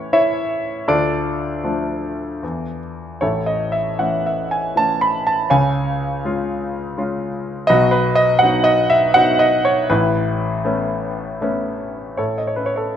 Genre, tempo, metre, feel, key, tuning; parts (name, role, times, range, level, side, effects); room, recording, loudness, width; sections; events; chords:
classical, lyrical solo piano; 74-84 BPM; 3/4; rubato; A lydian from 3.2 s; A4 = 440 Hz
clear concert grand piano; solo; 0.0-13.0 s; A1 to B5; -16 LUFS; equal
light reverb; -16 LUFS; side -9 dB against mid
0.0-3.2 A section; 3.2-12.2 B section
0.0 A; 0.9 Dm; 2.4 Dmadd9/E; 3.2 A; 5.5 C#; 7.7 B; 9.9 Aadd9; 12.2 A